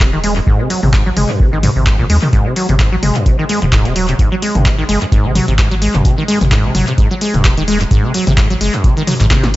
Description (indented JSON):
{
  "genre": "acid house",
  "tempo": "129 BPM",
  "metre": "4/4",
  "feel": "swing 55% on 16ths",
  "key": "Ab mixolydian",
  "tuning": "A4 = 441 Hz",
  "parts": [
    { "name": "deep acid bass", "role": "riff", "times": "0.0-9.6 s", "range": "Gb2 to Ab3", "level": "-16 LUFS", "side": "equal", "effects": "lush chorus, analog delay" },
    { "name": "warm sub bass", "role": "bass", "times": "0.0-9.6 s", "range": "Eb1 to Eb2", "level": "-17 LUFS", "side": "equal", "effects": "sidechain pumping" },
    { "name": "electronic kick drum", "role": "drums", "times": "0.0-9.4 s", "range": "none", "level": "-13 LUFS", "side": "equal", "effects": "overdrive, studio reverb" },
    { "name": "punchy analog drum machine", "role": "drums", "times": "0.0-9.6 s", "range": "handclaps, hi-hat, snare drum, toms", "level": "-18 LUFS", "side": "left 1 dB", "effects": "overdrive, studio reverb, analog delay" }
  ],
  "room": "light reverb",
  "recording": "echo-heavy mix, nothing above 7.8 kHz",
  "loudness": "-11 LUFS",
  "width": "side -17 dB against mid",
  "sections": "0.0-9.6 A section",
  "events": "drum fill 9.3",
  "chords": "0.0 Ab5"
}